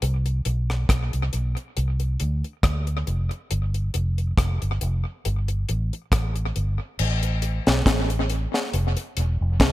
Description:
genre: lovers rock reggae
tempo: 69 BPM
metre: 4/4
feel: swing 55% on 16ths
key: unclear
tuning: A4 = 439 Hz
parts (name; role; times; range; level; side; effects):
- vintage muted fingered electric bass; bass; 0.0-9.7 s; E1 to D2; -23 LUFS; equal; none
- deep reggae drum kit; drums; 0.0-9.7 s; crash cymbal, hi-hat, kick drum, rim click, snare drum; -23 LUFS; equal; gated reverb, tape echo
room: little or no reverb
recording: none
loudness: -22 LUFS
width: side -16 dB against mid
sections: 0.0-7.0 A section; 7.0-9.7 B section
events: none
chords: none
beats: | 0.02 0.89 1.76 2.63 | 3.51 4.38 5.25 6.12 | 6.99 7.86 8.73 9.60

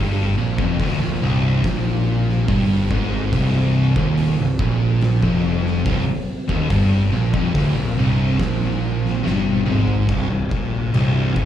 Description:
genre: stoner and doom metal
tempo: 71 BPM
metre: 4/4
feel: straight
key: C minor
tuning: A4 = 437 Hz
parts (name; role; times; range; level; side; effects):
- string machine, full ensemble; sustained chords; 0.0-11.5 s; C3 to C4; -34 LUFS; equal; none
- distorted electric guitar; riff; 0.0-10.1 s; C2 to Bb2; -29 LUFS; right 1 dB; overdrive, slapback echo
- thick fuzz guitar; riff; 0.0-11.5 s; C2 to Bb2; -22 LUFS; left 5 dB; distortion
- thick fuzz guitar; riff; 0.0-11.5 s; C2 to Bb2; -22 LUFS; right 6 dB; distortion
- fuzz picked electric bass; bass; 0.0-11.5 s; C1 to Bb1; -23 LUFS; equal; overdrive
- oversized low-tuned drum kit; drums; 0.6-11.5 s; crash cymbal, hi-hat, kick drum, snare drum, toms; -25 LUFS; equal; none
room: light reverb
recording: live gig heard through the venue's PA, club reverb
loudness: -17 LUFS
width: side -11 dB against mid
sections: 0.0-10.1 A section; 10.1-11.5 B section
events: drum fill 9.2-10.1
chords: 0.0 Cm; 10.1 C5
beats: 0.79 1.64 2.48 | 3.32 4.17 5.01 5.86 | 6.70 7.55 8.39 9.24 | 10.09 10.94

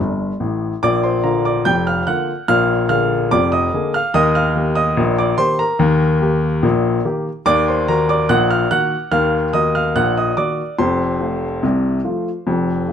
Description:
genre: ragtime piano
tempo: 72 BPM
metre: 2/4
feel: straight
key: Bb major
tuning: A4 = 440 Hz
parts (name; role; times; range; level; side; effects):
- clear baby grand piano; solo; 0.0-12.9 s; F1 to G6; -15 LUFS; left 1 dB; none
room: moderate club reverb, RT60 0.7 s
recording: dark, warm production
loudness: -15 LUFS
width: side -8 dB against mid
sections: 0.8-12.9 A section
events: grand piano fill 0.0-0.8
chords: 0.0 N.C.; 0.8 Bb; 2.5 Bb7; 4.2 Eb; 7.5 Ebm; 10.8 F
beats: | 0.82 1.66 | 2.49 3.32 | 4.15 4.98 | 5.81 6.64 | 7.46 8.29 | 9.12 9.96 | 10.79 11.63 | 12.47

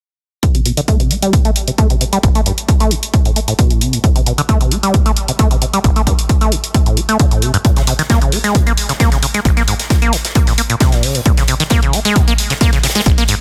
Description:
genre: driving peak-time techno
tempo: 133 BPM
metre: 4/4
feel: straight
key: unclear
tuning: A4 = 442 Hz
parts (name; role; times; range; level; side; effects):
- acid bass, saw; riff; 0.4-13.4 s; A1 to Bb3; -19 LUFS; equal; sidechain pumping, delay
- electronic hi-hat; drums; 0.4-13.4 s; none; -22 LUFS; equal; sidechain pumping on hats
- electronic kick drum; drums; 0.4-13.2 s; none; -16 LUFS; equal; none
- modern studio drum kit; drums; 7.6-13.4 s; hi-hat, snare drum; -28 LUFS; equal; sidechain pumping on hats, high-pass filter on hats, high-pass filter on snare, high-pass filter on room
room: studio reverb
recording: none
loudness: -14 LUFS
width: mono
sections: 0.4-13.4 A section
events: filter sweep on acid bass 0.4-13.4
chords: none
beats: | 0.43 0.88 1.33 1.78 | 2.23 2.69 3.14 3.59 | 4.04 4.49 4.94 5.39 | 5.84 6.29 6.75 7.20 | 7.65 8.10 8.55 9.00 | 9.45 9.90 10.35 10.80 | 11.26 11.71 12.16 12.61 | 13.06

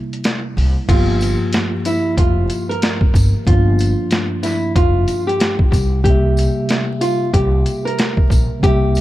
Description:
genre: hip hop, boom-bap hip-hop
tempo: 93 BPM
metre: 4/4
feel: swing 59% on 16ths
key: G dorian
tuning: A4 = 440 Hz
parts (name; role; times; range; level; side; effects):
- mellow tine electric piano; accompaniment; 0.0-9.0 s; G2 to E5; -22 LUFS; equal; medium stereo tremolo, cassette tape, high-pass filter, low-pass filter
- boom bap sampler-style drum kit; drums; 0.1-9.0 s; crash cymbal, hi-hat, kick drum, snare drum; -17 LUFS; equal; vintage 12-bit sampler grit
- upright bass; bass; 0.6-9.0 s; F1 to C2; -17 LUFS; equal; none
- nylon-string guitar; melody; 0.9-9.0 s; E4 to Bb4; -20 LUFS; equal; high-pass filter, low-pass filter, ping-pong delay
- tambourine; percussion; 1.2-9.0 s; none; -35 LUFS; left 3 dB; none
room: studio ambience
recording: dark, warm production, vinyl crackle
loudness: -14 LUFS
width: side -15 dB against mid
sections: 0.9-9.0 A section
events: break 0.0-0.9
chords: 0.0 C7; 0.9 Gm7; 5.7 C7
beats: 0.24 | 0.89 1.53 2.18 2.82 | 3.47 4.11 4.76 5.40 | 6.05 6.69 7.34 7.98 | 8.63

